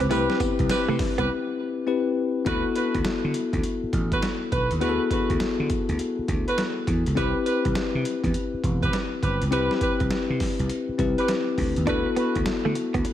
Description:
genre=R&B, new jack swing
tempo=102 BPM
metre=4/4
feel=swing 64% on 16ths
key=D mixolydian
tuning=A4 = 440 Hz
part: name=bell-like tine electric piano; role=accompaniment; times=0.0-13.1 s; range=B3 to B4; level=-26 LUFS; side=left 5 dB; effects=none
part: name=direct-recorded clean electric guitar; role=riff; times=0.0-1.2, 11.9-13.1 s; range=A3 to D4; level=-30 LUFS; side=right 4 dB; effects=wide subtle chorus
part: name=mellow horn section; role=stabs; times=0.0-12.4 s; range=C4 to B4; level=-30 LUFS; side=right 3 dB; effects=digital delay
part: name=vintage slap bass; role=bass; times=0.0-13.0 s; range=E1 to D3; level=-27 LUFS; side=right 1 dB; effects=none
part: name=boom bap sampler-style drum kit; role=drums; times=0.0-13.1 s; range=hi-hat, kick drum, snare drum, tambourine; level=-29 LUFS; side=right 1 dB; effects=overdrive
room=light reverb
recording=none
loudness=-22 LUFS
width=side -11 dB against mid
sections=0.0-2.5 A section; 2.5-13.1 B section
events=break 1.3-2.5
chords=0.0 Am9 (rootless); 2.5 D6; 7.2 Cmaj7/E; 11.9 D6

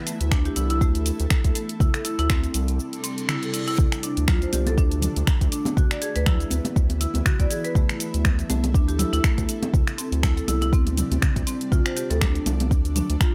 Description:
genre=afro house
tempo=121 BPM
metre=4/4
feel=swing 56% on 16ths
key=unclear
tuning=A4 = 440 Hz
part: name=ethereal airy pad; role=sustained chords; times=0.0-13.3 s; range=C3 to A4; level=-37 LUFS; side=equal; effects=ensemble chorus, built-in reverb, phaser, sidechain pumping
part: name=marimba with hard mallets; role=arpeggios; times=0.1-13.3 s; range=A3 to D5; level=-31 LUFS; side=equal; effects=sidechain pumping, tape echo
part: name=afro-pop drum kit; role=drums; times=0.1-13.3 s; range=cabasa, finger snaps, hi-hat, toms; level=-31 LUFS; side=equal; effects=none
part: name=round analog bass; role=bass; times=0.2-13.2 s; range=C2 to D2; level=-27 LUFS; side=equal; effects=sidechain pumping
part: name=electronic kick drum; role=drums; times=0.3-13.3 s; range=none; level=-23 LUFS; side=equal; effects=none
part: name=reverse cymbal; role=sound effects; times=3.0-3.8 s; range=none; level=-38 LUFS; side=equal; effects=none
part: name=congas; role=percussion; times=4.3-13.1 s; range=none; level=-32 LUFS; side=equal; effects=none
room=digital ambience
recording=none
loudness=-23 LUFS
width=mono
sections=0.0-13.3 A section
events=break 2.8-3.8; reverse cymbal 3.0-3.8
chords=0.0 C; 3.8 D7(no3); 5.8 E7sus2/D; 7.8 C; 11.7 Dm7

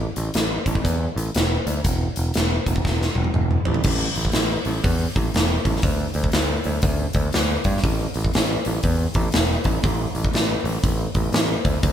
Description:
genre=blues rock power trio and southern rock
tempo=120 BPM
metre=4/4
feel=swing 63% on 8ths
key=unclear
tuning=A4 = 440 Hz
part: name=overdriven picked electric bass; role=bass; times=0.0-11.9 s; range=E1 to G2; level=-23 LUFS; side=equal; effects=none
part: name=big rock drum kit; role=drums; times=0.2-11.9 s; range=crash cymbal, hi-hat, kick drum, snare drum, toms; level=-21 LUFS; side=equal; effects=none
room=light reverb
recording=band playing live in one room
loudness=-19 LUFS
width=side -10 dB against mid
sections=0.0-3.9 A section; 3.9-11.9 B section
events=drum fill 2.9-3.9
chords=none

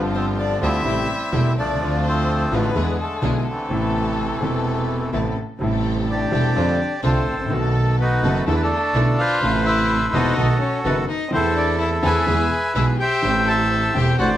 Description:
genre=tango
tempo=126 BPM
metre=4/4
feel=rubato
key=A minor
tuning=A4 = 440 Hz
part: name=bandoneon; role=melody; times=0.0-14.4 s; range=C3 to A5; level=-22 LUFS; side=equal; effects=none
part: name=clear concert grand piano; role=accompaniment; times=0.0-14.4 s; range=E1 to A4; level=-23 LUFS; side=equal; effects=none
part: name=warm symphonic string section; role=stabs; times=0.0-14.4 s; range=A3 to A4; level=-32 LUFS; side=equal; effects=none
part: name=clear double bass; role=bass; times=0.0-14.4 s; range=E1 to F2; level=-23 LUFS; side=right 1 dB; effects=none
part: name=warm violin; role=second line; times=0.1-14.3 s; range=A3 to E5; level=-28 LUFS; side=left 4 dB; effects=none
room=moderate studio reverb, RT60 0.8 s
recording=none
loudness=-18 LUFS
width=side -12 dB against mid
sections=0.0-5.6 A section; 5.6-14.4 B section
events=none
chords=0.0 G7sus4; 0.9 Am7; 1.8 Dm7; 2.7 E7; 3.7 Amadd9; 5.6 Am7; 6.6 F6; 7.5 B7; 8.5 E7sus4; 9.4 Amadd9; 10.4 B7; 11.3 Am/E; 12.3 E; 13.2 Am7

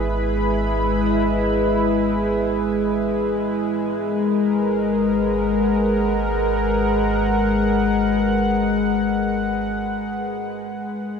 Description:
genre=ambient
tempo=free time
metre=none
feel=none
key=G# minor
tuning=A4 = 440 Hz
part: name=warm analog pad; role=sustained chords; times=0.0-11.2 s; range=G#3 to B5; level=-19 LUFS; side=left 1 dB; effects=chorus, shimmer reverb
part: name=deep rumbling drone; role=bass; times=0.0-11.2 s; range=G#1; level=-28 LUFS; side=right 1 dB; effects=built-in reverb
part: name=concert harp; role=arpeggios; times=1.0-10.6 s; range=B4 to E5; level=-36 LUFS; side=left 3 dB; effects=none
room=wet cathedral reverb, RT60 6.7 s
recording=dreamy mix soaked in reverb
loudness=-18 LUFS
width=side -6 dB against mid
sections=0.0-11.2 A section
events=fade-out 8.4-11.2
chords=0.0 E/G#; 3.9 G#m7; 10.6 E/G# (rootless)

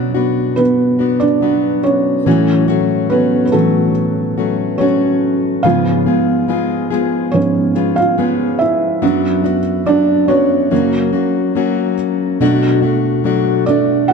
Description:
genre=pop ballad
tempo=71 BPM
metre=4/4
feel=straight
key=B minor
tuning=A4 = 440 Hz
part: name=felt-muted upright piano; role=accompaniment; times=0.0-14.1 s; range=F#2 to F#5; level=-14 LUFS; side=right 3 dB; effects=none
part: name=fingerpicked plugged-in steel-string acoustic guitar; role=arpeggios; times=0.0-14.1 s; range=F#2 to G#4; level=-17 LUFS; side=left 6 dB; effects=none
room=moderate plate reverb, RT60 2.5 s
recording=lossy compression artefacts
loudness=-12 LUFS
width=side -5 dB against mid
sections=0.0-14.1 A section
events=felt piano solo 0.0-14.1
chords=0.0 Bm; 2.3 F#m7/A; 5.6 C#7/G#; 9.0 Bm/F#; 10.7 F#; 12.4 Bm7

